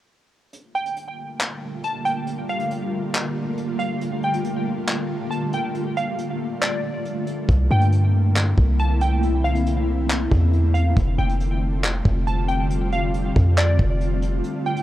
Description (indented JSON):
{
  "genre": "hip hop, atmospheric cloud-rap",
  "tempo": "138 BPM",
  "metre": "4/4",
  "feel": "half-time",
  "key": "G dorian",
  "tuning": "A4 = 440 Hz",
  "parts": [
    { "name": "ethereal airy pad", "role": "sustained chords", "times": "1.2-14.8 s", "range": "D3 to F4", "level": "-26 LUFS", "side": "equal", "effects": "ensemble chorus, built-in reverb, tremolo, sidechain pumping" },
    { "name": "soft brush drum kit", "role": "drums", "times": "0.5-14.8 s", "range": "handclaps, hi-hat, kick drum", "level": "-23 LUFS", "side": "equal", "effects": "none" },
    { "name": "glassy wavetable pluck", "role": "melody", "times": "0.8-14.8 s", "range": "D5 to A5", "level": "-27 LUFS", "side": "equal", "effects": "chorus, low-pass filter, digital delay" },
    { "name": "warm 808-style bass", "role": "bass", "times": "7.5-14.4 s", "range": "F1 to G2", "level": "-19 LUFS", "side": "equal", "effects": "none" }
  ],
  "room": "small room reverb",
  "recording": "worn, warbling old tape, cassette tape, warbly pitch drift",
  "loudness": "-19 LUFS",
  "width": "side -14 dB against mid",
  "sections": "0.5-14.8 A section",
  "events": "kick muted 0.5-7.5, 14.4-14.8",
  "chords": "0.5 Gm9; 7.5 C13; 11.0 F69"
}